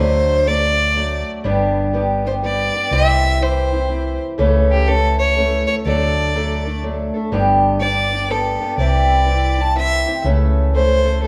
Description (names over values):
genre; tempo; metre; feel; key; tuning
honky-tonk and classic country; 123 BPM; 3/4; swing 64% on 8ths; D mixolydian; A4 = 440 Hz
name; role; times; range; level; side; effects
rich fiddle; melody; 0.0-11.3 s; G4 to A5; -21 LUFS; equal; none
picked old ladder-braced acoustic guitar; accompaniment; 0.0-11.3 s; G2 to A4; -22 LUFS; equal; none
hollow-body short-scale fingered electric bass; bass; 0.0-11.3 s; G1 to D2; -22 LUFS; equal; none
room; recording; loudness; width
moderate recital hall reverb, RT60 1.5 s; none; -17 LUFS; mono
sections
0.0-7.3 A section; 7.3-11.3 B section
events
fiddle solo 7.3-11.3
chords
0.0 D; 1.4 G; 2.9 C; 4.4 A/C#; 5.9 D; 7.3 G; 8.8 C; 10.2 A/C#